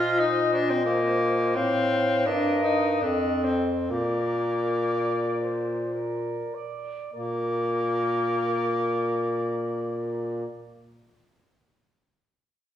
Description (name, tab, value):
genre	classical, lyrical piece for single-reed quartet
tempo	48-89 BPM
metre	3/4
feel	rubato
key	Bb major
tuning	A4 = 440 Hz
part	clear clarinet	melody	0.0-10.5 s	D5 to F5	-32 LUFS	left 4 dB	none
part	mellow alto saxophone	second line	0.0-10.4 s	A4 to D5	-33 LUFS	right 4 dB	none
part	clear tenor saxophone	accompaniment	0.0-10.5 s	Bb3 to F4	-27 LUFS	left 2 dB	none
part	clear bass clarinet	bass	0.0-10.4 s	F2 to Bb2	-27 LUFS	equal	none
room	wet recital hall reverb, RT60 1.5 s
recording	studio reverb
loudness	-23 LUFS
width	side -10 dB against mid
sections	0.0-7.1 A section; 7.1-12.8 B section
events	slowing down 0.5-7.1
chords	0.0 Cm7/Bb; 1.6 F/A; 2.3 Eb/G; 3.0 F7; 3.9 Bb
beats	0.19 0.87 | 1.55 2.26 3.02 | 3.91 4.88 5.94 | 7.13 8.22 9.28 | 10.38